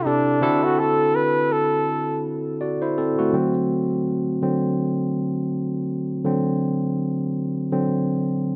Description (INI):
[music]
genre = soul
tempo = 82 BPM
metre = 4/4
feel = swing 58% on 16ths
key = unclear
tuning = A4 = 438 Hz
[part]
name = warm flugelhorn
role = melody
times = 0.0-2.2 s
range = D4 to B4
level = -24 LUFS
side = equal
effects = none
[part]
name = barky tine electric piano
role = accompaniment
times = 0.0-8.6 s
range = C3 to D5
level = -23 LUFS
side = equal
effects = overdrive
[sound]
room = moderate plate reverb, RT60 2.4 s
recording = dark, warm production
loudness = -22 LUFS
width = mono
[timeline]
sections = 0.0-3.3 A section; 3.3-8.6 B section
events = flugelhorn solo 0.0-3.3; tine electric piano solo 3.3-8.6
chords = 0.4 D7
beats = | 0.43 1.16 1.88 2.61 | 3.34 4.07 4.80 5.52 | 6.25 6.98 7.71 8.43